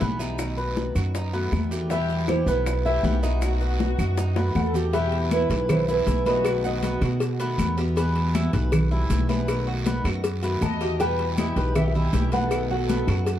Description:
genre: latin, Cuban son and guajira.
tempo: 158 BPM.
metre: 4/4.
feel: straight.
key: E harmonic minor.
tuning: A4 = 440 Hz.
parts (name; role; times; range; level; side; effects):
picked steel-string acoustic guitar; accompaniment; 0.0-13.3 s; B2 to F#4; -32 LUFS; left 3 dB; none.
Cuban tres; arpeggios; 0.0-13.4 s; B3 to B4; -31 LUFS; right 1 dB; none.
upright bass; bass; 0.0-13.4 s; B1 to B2; -25 LUFS; equal; none.
bongos and cowbell; percussion; 0.0-13.4 s; none; -32 LUFS; left 4 dB; none.
congas; percussion; 0.0-13.4 s; none; -29 LUFS; left 1 dB; none.
guiro; percussion; 0.0-13.4 s; none; -42 LUFS; right 6 dB; none.
maracas; percussion; 0.0-13.4 s; none; -45 LUFS; right 6 dB; none.
claves; percussion; 0.4-13.3 s; none; -39 LUFS; equal; none.
nylon-string guitar; melody; 1.9-7.4, 10.6-13.4 s; B4 to A5; -28 LUFS; right 1 dB; tape echo.
dark studio violin section; second line; 1.9-7.4, 10.6-13.4 s; E4 to D#5; -33 LUFS; equal; none.
room: light reverb.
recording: dark, warm production.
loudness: -21 LUFS.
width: side -11 dB against mid.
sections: 0.0-4.9 A section; 4.9-13.4 B section.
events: drum fill 4.2-4.9.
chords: 0.4 B7; 1.9 Em; 3.4 B7; 4.9 Em; 6.5 B7; 8.0 Em; 9.5 B7; 11.0 Em; 12.5 B7.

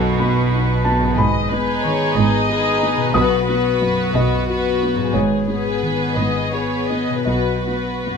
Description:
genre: cinematic, emotional film score for orchestra.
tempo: 50-61 BPM (dotted quarters).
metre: 6/8.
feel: rubato.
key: unclear.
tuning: A4 = 440 Hz.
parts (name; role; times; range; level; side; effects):
warm studio violin section; melody; 0.0-8.2 s; B4; -27 LUFS; left 6 dB; none.
warm studio violin section; second line; 0.0-8.2 s; B3 to G#4; -24 LUFS; left 1 dB; none.
felt-muted upright piano; accompaniment; 0.0-8.2 s; B1 to D#6; -22 LUFS; left 2 dB; none.
rich studio viola section; accompaniment; 0.0-8.2 s; F#4 to D#5; -25 LUFS; equal; none.
concert harp; arpeggios; 0.0-8.2 s; G#2 to B4; -26 LUFS; left 8 dB; none.
dark studio double bass section; bass; 0.0-8.2 s; G#1 to B1; -25 LUFS; right 4 dB; none.
warm symphonic cello section; bass; 0.0-8.2 s; G#2 to B2; -23 LUFS; right 3 dB; none.
room: light reverb.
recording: close, detailed microphones.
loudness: -16 LUFS.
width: side -6 dB against mid.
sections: 0.0-8.2 A section.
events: none.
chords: 0.0 B; 1.2 G#m; 3.1 B; 5.1 G#m; 7.3 B.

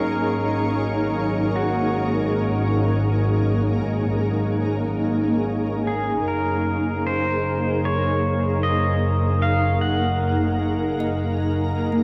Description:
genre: ambient.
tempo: 77 BPM.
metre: 4/4.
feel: straight.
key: Gb major.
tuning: A4 = 439 Hz.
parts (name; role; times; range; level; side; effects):
pedal steel guitar; melody; 0.0-11.3 s; Gb4 to Gb5; -29 LUFS; equal; delay.
shimmering ambient pad; sustained chords; 0.0-12.0 s; Bb3 to Db5; -26 LUFS; equal; chorus, built-in reverb.
dark studio double bass section; bass; 0.0-12.0 s; Gb1 to Ab1; -26 LUFS; equal; none.
organ-like drone; drone; 0.0-6.3 s; Gb3 to Db4; -35 LUFS; equal; none.
kalimba; arpeggios; 11.0-12.0 s; Bb3 to Eb5; -30 LUFS; equal; none.
room: wet huge ambient reverb, RT60 8.0 s.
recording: dark, warm production.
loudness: -22 LUFS.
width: mono.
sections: 0.0-6.3 A section; 6.3-12.0 A section.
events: fade-in on kalimba 6.3-12.0.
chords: 0.0 Ab9sus4; 6.3 Gb.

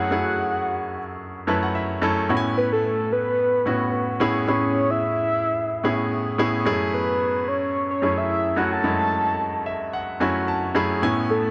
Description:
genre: amapiano.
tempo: 110 BPM.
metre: 4/4.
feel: swing 55% on 16ths.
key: F# minor.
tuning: A4 = 440 Hz.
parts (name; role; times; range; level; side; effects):
soft octave-layered synth lead; melody; 0.0-11.5 s; A4 to A5; -26 LUFS; equal; chorus, delay.
clear concert grand piano; accompaniment; 0.0-11.5 s; F#2 to B5; -25 LUFS; equal; none.
room: moderate lush hall reverb, RT60 2.5 s.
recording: none.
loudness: -23 LUFS.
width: mono.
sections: 0.0-11.5 A section.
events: grand piano fill 1.2-2.3, 9.4-11.0.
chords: 0.0 F#m7; 2.3 Amaj9; 6.7 F#m7.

